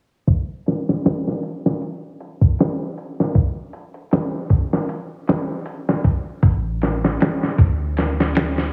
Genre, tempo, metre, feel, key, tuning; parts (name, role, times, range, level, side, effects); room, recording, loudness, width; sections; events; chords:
trip hop; 78 BPM; 4/4; swing 56% on 16ths; A4 = 444 Hz
dusty soul sampler-style drum kit; drums; 0.3-8.7 s; hi-hat, kick drum, snare drum; -21 LUFS; equal; low-pass filter on hats, vintage 12-bit sampler grit, low-pass filter on kick, low-pass filter on snare, low-pass filter on room
soft 808-style bass; bass; 6.4-8.7 s; A1 to D2; -24 LUFS; equal
moderate plate reverb, RT60 2.1 s; heavily compressed radio sound, low-pass filter, studio reverb; -21 LUFS; mono
0.3-8.7 A section
filter sweep 0.3-8.7